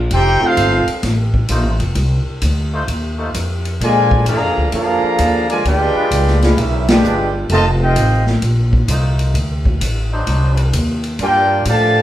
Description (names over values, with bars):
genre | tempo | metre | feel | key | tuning
jazz, big band swing | 130 BPM | 4/4 | swing 66% on 8ths | F major | A4 = 440 Hz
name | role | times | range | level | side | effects
upright bass | bass | 0.0-12.0 s | F1 to Bb2 | -16 LUFS | equal | none
mellow trumpet section | melody | 0.1-0.9, 3.8-8.2, 11.2-12.0 s | Db4 to Bb5 | -17 LUFS | equal | none
dark trombone section | second line | 0.1-0.9, 3.8-8.2, 11.2-12.0 s | C3 to G4 | -19 LUFS | right 1 dB | none
swinging big-band drum kit | drums | 0.1-11.8 s | hi-hat, kick drum, ride cymbal, snare drum | -21 LUFS | left 1 dB | none
muted trombone section | sustained chords | 1.5-10.7 s | F#3 to C5 | -26 LUFS | equal | none
room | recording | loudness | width
moderate large studio reverb, RT60 1.2 s | heard from further back in the room | -13 LUFS | side -13 dB against mid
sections
0.0-12.0 A section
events
band accent 6.8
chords
0.1 F7; 3.8 Bb7; 5.7 Bdim7; 7.5 F7; 9.3 D7b9; 11.2 Gm7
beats
| 0.11 0.57 1.03 1.50 | 1.96 2.42 2.88 3.34 | 3.81 4.27 4.73 5.19 | 5.65 6.12 6.58 7.04 | 7.50 7.96 8.43 8.89 | 9.35 9.81 10.27 10.74 | 11.20 11.66